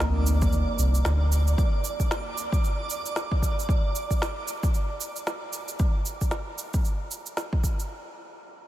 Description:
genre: organic downtempo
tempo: 114 BPM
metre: 4/4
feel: swing 59% on 16ths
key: unclear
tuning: A4 = 440 Hz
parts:
  - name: round analog bass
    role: bass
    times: 0.0-1.6 s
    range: C2 to D2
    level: -22 LUFS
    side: equal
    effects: sidechain pumping
  - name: electronic snare drum and cabasa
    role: drums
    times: 0.0-7.9 s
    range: none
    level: -33 LUFS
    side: right 1 dB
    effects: overdrive
  - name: sub drop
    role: sound effects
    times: 0.0-1.6 s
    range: none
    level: -35 LUFS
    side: equal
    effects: none
  - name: twinkling granular texture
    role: texture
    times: 0.2-5.8 s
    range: D5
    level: -35 LUFS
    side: right 4 dB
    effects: built-in reverb
  - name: electronic kick drum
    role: drums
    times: 0.4-7.8 s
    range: none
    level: -25 LUFS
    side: equal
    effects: overdrive
room: moderate huge ambient reverb, RT60 8.3 s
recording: dreamy mix soaked in reverb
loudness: -24 LUFS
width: side -14 dB against mid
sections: 0.0-7.9 A section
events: impact 0.0-1.6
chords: 0.0 Csus2; 1.6 N.C.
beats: 0.00 0.53 1.05 | 1.58 2.10 2.63 3.16 | 3.68 4.21 4.74 5.26 | 5.79 6.32 6.84 7.37

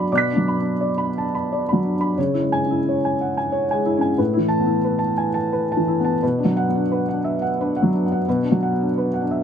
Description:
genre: neoclassical minimalist piano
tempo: 89 BPM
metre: 3/4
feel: rubato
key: B dorian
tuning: A4 = 440 Hz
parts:
  - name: felt-muted upright piano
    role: solo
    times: 0.0-9.4 s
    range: A2 to B6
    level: -18 LUFS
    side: equal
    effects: none
room: light reverb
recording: none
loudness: -18 LUFS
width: side -8 dB against mid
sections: 0.0-9.4 A section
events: none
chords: 0.0 Bm; 2.2 C#m; 4.2 Asus2; 6.2 Bm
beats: | 0.10 0.78 1.48 | 2.17 2.85 3.52 | 4.19 4.87 5.54 | 6.22 6.91 7.59 | 8.26 8.93

